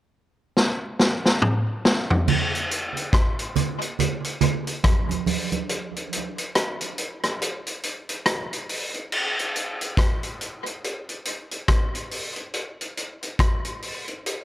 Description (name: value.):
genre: reggae.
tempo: 70 BPM.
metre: 4/4.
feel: swing 60% on 16ths.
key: none.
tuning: none.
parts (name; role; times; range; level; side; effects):
vintage drum kit; drums; 0.6-14.4 s; crash cymbal, hi-hat, kick drum, rim click, snare drum, toms; -23 LUFS; equal; none.
congas; percussion; 2.3-5.7 s; none; -25 LUFS; right 6 dB; dub echo.
room: light reverb.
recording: echo-heavy mix.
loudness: -22 LUFS.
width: side -13 dB against mid.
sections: 0.0-2.3 A section; 2.3-9.1 B section; 9.1-14.4 C section.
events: drum fill 0.6-2.3; break 5.7-9.1.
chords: none.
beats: 0.57 1.42 | 2.28 3.13 3.99 4.84 | 5.70 6.55 7.41 8.27 | 9.12 9.97 10.83 11.69 | 12.54 13.40 14.25.